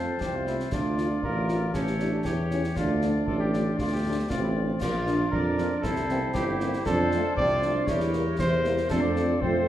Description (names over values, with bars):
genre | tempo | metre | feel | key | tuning
military-style march for wind band | 117 BPM | 2/4 | straight | F major | A4 = 440 Hz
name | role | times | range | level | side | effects
mellow cornet | melody | 0.0-9.7 s | E4 to D5 | -31 LUFS | equal | none
clear euphonium | second line | 0.0-9.7 s | Bb3 to F4 | -31 LUFS | right 3 dB | none
warm woodwind section | second line | 0.0-9.7 s | E4 to D5 | -33 LUFS | left 2 dB | none
dark French horn section | accompaniment | 0.0-9.7 s | E3 to F4 | -34 LUFS | left 3 dB | none
warm tuba | bass | 0.0-9.7 s | G1 to F2 | -28 LUFS | right 1 dB | none
concert snare drum, concert bass drum and clash cymbals | drums | 0.2-9.6 s | none | -35 LUFS | left 1 dB | none
room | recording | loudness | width
wet recital hall reverb, RT60 1.3 s | recorded in a church or concert hall | -24 LUFS | side -12 dB against mid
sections
0.0-9.7 A section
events
none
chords
0.0 F; 0.7 Dm; 1.7 A7; 2.8 Dm; 4.8 Bb; 5.8 C7; 6.9 F; 7.9 Edim7; 8.9 F